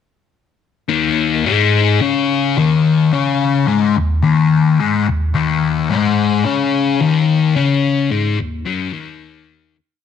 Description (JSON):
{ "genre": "rock", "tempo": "108 BPM", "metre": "4/4", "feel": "straight", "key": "Eb minor", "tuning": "A4 = 441 Hz", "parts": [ { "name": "fuzz guitar", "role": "solo", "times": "0.9-9.8 s", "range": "Eb2 to Db4", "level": "-13 LUFS", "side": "left 5 dB", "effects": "distortion, phaser" } ], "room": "moderate echo chamber reverb, RT60 1.4 s", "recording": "none", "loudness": "-13 LUFS", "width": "side -8 dB against mid", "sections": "0.9-9.8 riff", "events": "fade-out 7.6-9.8", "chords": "none", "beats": "| 0.88 1.44 2.00 2.56 | 3.11 3.67 4.23 4.78 | 5.34 5.89 6.45 7.00 | 7.55 8.11 8.66 9.21" }